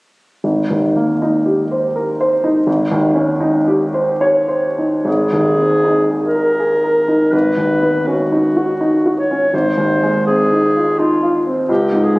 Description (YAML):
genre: classical, impressionist duo for clarinet and grand piano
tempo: 67-87 BPM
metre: 3/4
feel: rubato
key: Ab mixolydian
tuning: A4 = 440 Hz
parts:
  - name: warm baby grand piano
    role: accompaniment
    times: 0.4-12.2 s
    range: Ab1 to Db5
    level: -14 LUFS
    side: equal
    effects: none
  - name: warm clarinet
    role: melody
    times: 5.1-12.2 s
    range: F4 to C#5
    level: -16 LUFS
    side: equal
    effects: none
room: moderate concert hall reverb, RT60 2.4 s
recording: recorded on a phone in the room, studio reverb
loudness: -13 LUFS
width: side -23 dB against mid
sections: 0.5-5.1 A section; 5.1-12.2 B section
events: none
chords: 0.5 Abmaj9; 2.7 Eb6/Ab; 5.1 Abadd9; 7.3 Badd9/Ab; 9.5 Ab6